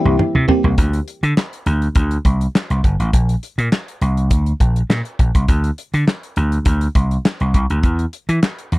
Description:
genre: early-eighties boogie funk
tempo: 102 BPM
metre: 4/4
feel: straight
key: unclear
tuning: A4 = 440 Hz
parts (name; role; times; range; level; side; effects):
- mellow horn-like synth lead; melody; 0.0-0.5 s; E4; -23 LUFS; equal; chorus, tape echo
- FM electric piano with soft pad layer; accompaniment; 0.0-0.8 s; E3 to G4; -20 LUFS; left 4 dB; chorus, phaser
- clean electric guitar; riff; 0.0-0.8 s; Bb3 to C4; -20 LUFS; right 8 dB; wide subtle chorus
- vintage slap bass; bass; 0.1-8.8 s; G1 to E3; -16 LUFS; equal; none
- damped 70s drum kit; drums; 0.1-8.8 s; handclaps, hi-hat, kick drum, snare drum, toms; -17 LUFS; equal; none
room: little or no reverb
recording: dry, close 1970s-style studio recording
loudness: -15 LUFS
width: side -19 dB against mid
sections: 0.8-8.8 A section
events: drum fill 0.0-0.8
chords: 0.0 C7; 0.8 D5; 3.1 Bbsus2; 5.5 Csus2; 7.8 N.C.

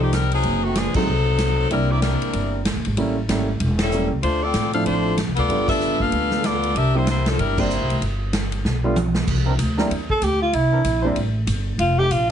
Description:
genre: jazz, big band swing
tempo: 190 BPM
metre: 4/4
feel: swing 61% on 8ths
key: C mixolydian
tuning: A4 = 436 Hz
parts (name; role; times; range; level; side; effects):
- warm saxophone section; melody; 0.0-8.0 s; Eb3 to F5; -22 LUFS; left 3 dB; none
- warm grand piano; accompaniment; 0.0-11.2 s; F3 to G4; -25 LUFS; right 2 dB; none
- upright bass; bass; 0.0-12.3 s; E1 to A2; -22 LUFS; equal; none
- swinging big-band drum kit; drums; 0.1-12.2 s; crash cymbal, hi-hat, kick drum, ride cymbal, snare drum, toms; -27 LUFS; right 1 dB; none
- clear trombone section; sustained chords; 9.5-12.1 s; E3 to C5; -30 LUFS; right 1 dB; none
- breathy alto saxophone; melody; 10.1-12.3 s; E4 to A4; -19 LUFS; right 1 dB; none
room: light reverb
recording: heavily compressed radio sound, nothing above 10.4 kHz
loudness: -18 LUFS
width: side -9 dB against mid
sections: 0.0-9.3 A section; 9.3-12.3 B section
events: band accent 0.9, 3.8, 5.6, 7.5; drum fill 8.6-9.3; alto saxophone solo 9.3-12.3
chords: 0.4 F#dim7; 1.7 C9; 3.0 A7b9; 4.2 Dm7; 5.5 G9; 6.7 C9; 8.0 G; 9.3 C9; 11.8 F9

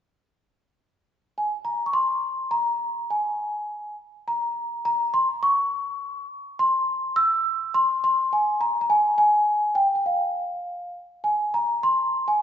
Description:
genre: fado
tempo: 103 BPM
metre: 4/4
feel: rubato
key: unclear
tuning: A4 = 443 Hz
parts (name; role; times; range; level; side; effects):
- large celesta; solo; 1.4-12.4 s; F5 to E6; -21 LUFS; equal; none
room: wet recital hall reverb, RT60 1.8 s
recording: heard from further back in the room, nothing above 7.8 kHz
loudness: -21 LUFS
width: side -9 dB against mid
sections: 0.0-1.9 A section; 1.9-11.2 B section; 11.2-12.4 C section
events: none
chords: none

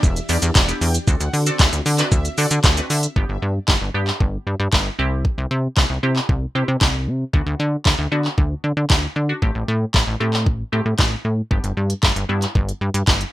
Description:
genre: dance-pop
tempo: 115 BPM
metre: 4/4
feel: straight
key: G major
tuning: A4 = 444 Hz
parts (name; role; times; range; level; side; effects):
- soft supersaw; melody; 0.0-3.0 s; D5 to G5; -32 LUFS; equal; ping-pong delay
- wavetable chord stab; accompaniment; 0.0-12.8 s; A3 to B4; -27 LUFS; equal; sidechain pumping
- string machine, violas; sustained chords; 0.0-3.1 s; D3 to G4; -33 LUFS; equal; none
- plucky analog bass; bass; 0.0-13.2 s; E1 to D3; -20 LUFS; equal; sidechain pumping
- smooth R&B drum kit; drums; 0.0-13.3 s; handclaps, hi-hat, kick drum, shaker, snare drum; -17 LUFS; equal; none
room: little or no reverb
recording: rough home demo mix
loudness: -17 LUFS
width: side -15 dB against mid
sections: 0.0-3.2 A section; 3.2-13.3 B section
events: drop 0.0-3.2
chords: 0.0 Em7; 1.1 D7; 3.2 G; 5.0 C; 7.3 D6; 9.4 Am7; 11.5 G

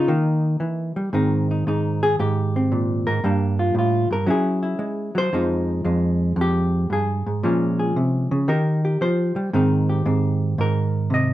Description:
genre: solo jazz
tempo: 114 BPM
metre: 4/4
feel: swing 68% on 8ths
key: Ab major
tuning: A4 = 440 Hz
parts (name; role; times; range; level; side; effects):
- hollow-body jazz guitar; solo; 0.0-11.3 s; F2 to Eb5; -19 LUFS; equal; none
room: wet studio reverb, RT60 0.6 s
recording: band playing live in one room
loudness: -19 LUFS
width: side -14 dB against mid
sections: 0.0-1.1 A section; 1.1-11.3 B section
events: hollow-body jazz guitar solo 1.1-11.3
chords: 0.1 Eb; 1.1 Abmaj9; 3.2 Gm7; 4.3 Gbsus2; 5.3 Fm9; 7.4 Bbm7; 8.5 Ebadd9; 9.5 Abmaj9

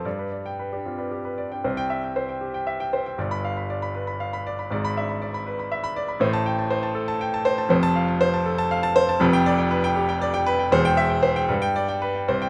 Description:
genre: classical, virtuoso piano study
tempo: 79 BPM (dotted quarters)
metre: 6/8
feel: rubato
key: C major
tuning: A4 = 440 Hz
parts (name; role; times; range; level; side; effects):
- warm grand piano; solo; 0.0-12.5 s; E1 to B5; -24 LUFS; equal; none
room: light reverb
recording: none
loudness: -24 LUFS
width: mono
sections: 0.0-1.6 A section; 1.6-12.5 B section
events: none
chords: 0.1 G; 1.6 C; 3.2 G7; 4.7 E7/G#; 6.2 Am7; 7.7 F; 9.2 G7/F; 10.7 C/E; 11.5 G

